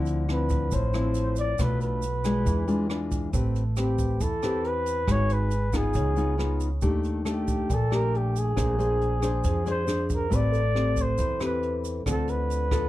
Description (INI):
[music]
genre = bossa nova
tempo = 138 BPM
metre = 4/4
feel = straight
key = unclear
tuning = A4 = 438 Hz
[part]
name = nylon-string guitar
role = accompaniment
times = 0.0-12.9 s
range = A2 to C5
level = -28 LUFS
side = left 2 dB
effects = none
[part]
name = upright bass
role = bass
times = 0.0-12.9 s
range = Ab1 to F2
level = -28 LUFS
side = right 1 dB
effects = none
[part]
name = jazz brush drum kit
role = drums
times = 0.1-12.8 s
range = hi-hat, kick drum, rim click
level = -31 LUFS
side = right 1 dB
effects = none
[part]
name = egg shaker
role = percussion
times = 0.1-12.9 s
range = none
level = -45 LUFS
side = right 10 dB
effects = none
[part]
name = breathy flugelhorn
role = melody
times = 0.3-12.9 s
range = G4 to D5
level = -29 LUFS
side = equal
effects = none
[part]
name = tine electric piano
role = accompaniment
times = 10.5-12.1 s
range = A4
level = -37 LUFS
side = right 3 dB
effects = overdrive
[sound]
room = light reverb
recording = dark, warm production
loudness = -23 LUFS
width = side -15 dB against mid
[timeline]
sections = 0.0-12.9 A section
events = none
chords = 0.0 Dm9; 1.6 Bm7b5; 2.5 E7b9; 3.3 Am9; 5.1 Abm7; 6.0 Db9; 6.8 Ebmaj7#11; 8.6 Bb9; 10.3 Am9; 12.1 Dm7